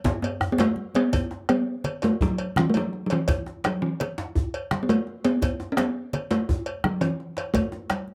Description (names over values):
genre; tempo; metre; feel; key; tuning
west african traditional, West African drum ensemble; 112 BPM (dotted quarters); 12/8; straight; unclear; A4 = 438 Hz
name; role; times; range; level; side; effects
bombo; percussion; 0.0-8.1 s; none; -29 LUFS; equal; none
congas; percussion; 0.0-8.1 s; none; -34 LUFS; equal; none
djembe; percussion; 0.0-8.1 s; none; -35 LUFS; equal; none
djembe; percussion; 0.0-0.8 s; none; -31 LUFS; equal; none
cowbell; percussion; 0.2-8.1 s; none; -35 LUFS; equal; none
talking drum; melody; 0.5-8.1 s; E3 to C#4; -26 LUFS; equal; none
room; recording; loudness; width
moderate small room reverb, RT60 0.5 s; none; -26 LUFS; mono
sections
0.0-1.1 A section; 1.1-8.1 B section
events
drum fill 0.0-1.1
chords
none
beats
0.05 0.59 | 1.13 1.67 2.21 2.75 | 3.29 3.82 4.36 4.89 | 5.42 5.96 6.49 7.02 | 7.55 8.08